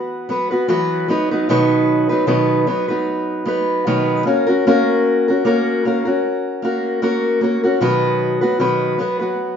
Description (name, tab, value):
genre	pop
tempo	76 BPM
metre	4/4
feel	swing 55% on 16ths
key	B major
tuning	A4 = 439 Hz
part	fingerpicked steel-string acoustic guitar	solo	0.0-9.6 s	B2 to B4	-15 LUFS	equal	none
room	wet large studio reverb, RT60 1.0 s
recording	band playing live in one room, nothing above 7.4 kHz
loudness	-15 LUFS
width	side -7 dB against mid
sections	0.0-9.6 A section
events	none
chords	0.0 Esus2; 1.1 B; 4.3 F#/A#; 7.8 B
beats	0.69 | 1.49 2.28 3.08 3.87 | 4.66 5.45 6.24 7.03 | 7.82 8.61 9.40